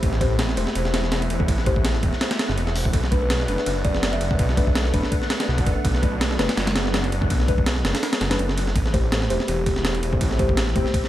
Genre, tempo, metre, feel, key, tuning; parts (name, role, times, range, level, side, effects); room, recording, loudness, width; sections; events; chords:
drum and bass, jungle; 165 BPM; 4/4; swing 54% on 16ths; A dorian; A4 = 440 Hz
soft string machine; sustained chords; 0.0-11.1 s; A3 to F#5; -30 LUFS; equal; phaser, ensemble chorus, vintage 12-bit sampler grit
deep mellow chord stab; stabs; 0.0-11.1 s; A3 to C5; -30 LUFS; left 3 dB; chorus, dub echo
detuned saw bass; bass; 0.0-10.8 s; E1 to B1; -24 LUFS; equal
breakbeat sampler-style drum kit; drums; 0.0-11.1 s; hi-hat, kick drum, ride cymbal, snare drum; -22 LUFS; equal; studio reverb, analog delay
kalimba; melody; 3.1-4.5, 8.9-9.6 s; G4 to E5; -31 LUFS; equal; analog delay
light reverb; echo-heavy mix; -19 LUFS; side -13 dB against mid
0.0-11.1 A section
0.0 Am7; 2.9 Bm7; 8.8 Am7